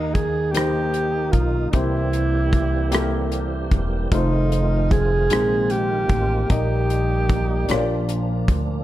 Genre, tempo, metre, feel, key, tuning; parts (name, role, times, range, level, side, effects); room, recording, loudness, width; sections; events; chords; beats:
slow gospel; 50 BPM (dotted quarters); 6/8; straight; Eb major; A4 = 438 Hz
warm alto saxophone; melody; 0.0-8.1 s; Eb4 to Ab4; -24 LUFS; right 2 dB
warm baby grand piano; accompaniment; 0.0-8.8 s; Bb2 to Eb5; -27 LUFS; left 3 dB
tonewheel organ; sustained chords; 0.0-8.8 s; Eb3 to G4; -29 LUFS; right 3 dB; slow rotary speaker, overdrive, chorus vibrato
upright bass; bass; 0.0-8.8 s; E1 to Eb2; -23 LUFS; equal
natural country drum kit; drums; 0.1-8.7 s; hi-hat, kick drum, rim click; -23 LUFS; equal
small room ambience; -18 LUFS; side -14 dB against mid
0.0-8.8 A section
0.0 Eb; 1.7 C7; 4.1 F7; 5.3 Bb9sus4; 6.5 Eb/Bb; 7.7 Bb
0.55 | 1.74 2.93 | 4.12 5.31 | 6.50 7.69